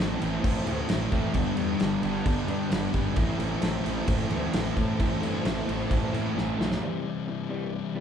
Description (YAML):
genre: quiet-loud alternative rock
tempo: 132 BPM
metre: 4/4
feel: straight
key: A minor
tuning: A4 = 441 Hz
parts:
  - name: string machine, violas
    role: sustained chords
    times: 0.0-6.8 s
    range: D4 to A5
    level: -39 LUFS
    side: left 1 dB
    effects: phaser, ensemble chorus
  - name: thick fuzz guitar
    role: riff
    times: 0.0-8.0 s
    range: G2 to E4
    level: -30 LUFS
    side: left 6 dB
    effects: distortion
  - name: thick fuzz guitar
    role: riff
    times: 0.0-6.8 s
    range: G2 to A3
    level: -31 LUFS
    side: right 6 dB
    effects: distortion
  - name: fuzz picked electric bass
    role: bass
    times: 0.0-6.7 s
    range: G1 to A2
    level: -34 LUFS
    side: equal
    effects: overdrive
  - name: loose indie drum kit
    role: drums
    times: 0.0-6.8 s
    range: crash cymbal, kick drum, snare drum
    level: -29 LUFS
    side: equal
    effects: none
  - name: electric guitar through a small old amp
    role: arpeggios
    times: 6.8-8.0 s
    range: C3 to G3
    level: -36 LUFS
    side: left 2 dB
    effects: none
room: wet large studio reverb, RT60 1.2 s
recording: band playing live in one room, cassette tape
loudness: -25 LUFS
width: side -8 dB against mid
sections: 0.0-6.8 A section; 6.8-8.0 B section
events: drum fill 6.4-6.8; half time 6.8-8.0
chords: 0.0 Am7; 1.4 Gadd9; 3.2 Am7; 5.0 Am; 6.8 C